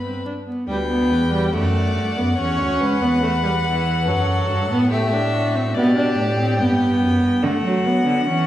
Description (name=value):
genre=classical, baroque-style fugue for string quartet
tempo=71 BPM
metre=4/4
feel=straight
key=G major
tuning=A4 = 440 Hz
part: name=warm violin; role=melody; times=0.0-8.5 s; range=D5 to B5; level=-25 LUFS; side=left 4 dB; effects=none
part: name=rich violin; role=second line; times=0.0-7.4 s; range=F#4 to D5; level=-28 LUFS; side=left 2 dB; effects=none
part: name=rich viola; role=accompaniment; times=0.0-8.5 s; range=E3 to D4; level=-20 LUFS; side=right 1 dB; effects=none
part: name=rich cello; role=bass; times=0.0-8.5 s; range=C#2 to F#3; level=-22 LUFS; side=right 1 dB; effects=none
room=wet recital hall reverb, RT60 1.6 s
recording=heard from further back in the room, vinyl crackle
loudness=-17 LUFS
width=side -12 dB against mid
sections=0.7-8.5 A section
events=none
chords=0.0 G; 0.7 G/D; 2.4 A (rootless); 4.1 D/F#; 7.4 D